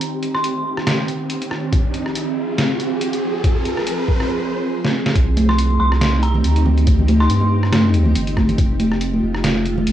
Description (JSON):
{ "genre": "deep dubstep", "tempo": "140 BPM", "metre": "4/4", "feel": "swing 56% on 16ths, half-time", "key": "C minor", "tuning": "A4 = 440 Hz", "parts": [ { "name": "granular cloud pad", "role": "sustained chords", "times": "0.0-9.9 s", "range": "C3 to Ab4", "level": "-23 LUFS", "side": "right 1 dB", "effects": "built-in reverb" }, { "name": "trip hop sampler-style drum kit", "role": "drums", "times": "0.0-9.9 s", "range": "hi-hat, rim click, snare drum", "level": "-23 LUFS", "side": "equal", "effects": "none" }, { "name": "riser", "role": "sound effects", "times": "0.1-4.3 s", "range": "none", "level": "-28 LUFS", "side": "equal", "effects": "none" }, { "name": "dark detuned synth bell", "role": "melody", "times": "0.3-0.9, 5.5-7.8 s", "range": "Bb5 to C6", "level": "-25 LUFS", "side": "equal", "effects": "chorus, dub echo" }, { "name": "electronic kick drum", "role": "drums", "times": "1.7-8.7 s", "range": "none", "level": "-17 LUFS", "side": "equal", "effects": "none" }, { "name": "saturated sub bass", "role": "bass", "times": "5.2-9.9 s", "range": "F1 to G2", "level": "-17 LUFS", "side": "equal", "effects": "tube saturation" }, { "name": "congas", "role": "percussion", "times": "5.4-9.9 s", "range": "none", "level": "-20 LUFS", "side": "equal", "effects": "none" } ], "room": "light reverb", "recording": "dry, gritty hardware recording, cassette tape, studio ambience", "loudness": "-15 LUFS", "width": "side -11 dB against mid", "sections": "0.0-5.2 A section; 5.2-9.9 B section", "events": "build-up 0.0-5.2; filter sweep on ambient pad 0.0-5.2; riser 0.1-4.3; drum fill 4.8-5.2; drop 5.2-9.9", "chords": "0.0 Cm; 1.7 Fm; 5.2 Cm; 8.6 Fm", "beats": "| 0.01 0.44 0.87 1.30 | 1.73 2.15 2.58 3.01 | 3.44 3.87 4.30 4.73 | 5.16 5.58 6.01 6.44 | 6.87 7.30 7.73 8.15 | 8.58 9.01 9.44 9.87" }